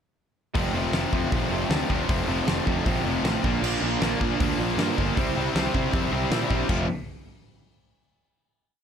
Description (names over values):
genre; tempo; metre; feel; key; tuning
punk rock; 157 BPM; 4/4; straight; F major; A4 = 440 Hz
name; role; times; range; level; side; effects
fuzz guitar; riff; 0.5-6.8 s; F2 to F4; -31 LUFS; left 1 dB; distortion
raw garage guitar; riff; 0.5-6.8 s; F2 to E4; -29 LUFS; right 11 dB; overdrive
tight distorted guitar; riff; 0.5-6.9 s; F2 to C4; -29 LUFS; left 12 dB; distortion
fuzz picked electric bass; bass; 0.6-6.9 s; F1 to C3; -30 LUFS; equal; overdrive
big rock drum kit; drums; 0.6-6.8 s; crash cymbal, hi-hat, kick drum, snare drum; -28 LUFS; equal; none
room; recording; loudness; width
little or no reverb; none; -22 LUFS; side -8 dB against mid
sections
0.6-6.7 riff; 6.7-8.2 final chord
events
none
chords
0.6 F; 3.4 Bb; 5.2 C; 6.7 F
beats
| 0.56 0.94 1.32 1.71 | 2.09 2.48 2.86 3.25 | 3.63 4.02 4.40 4.79 | 5.17 5.55 5.93 6.31 | 6.69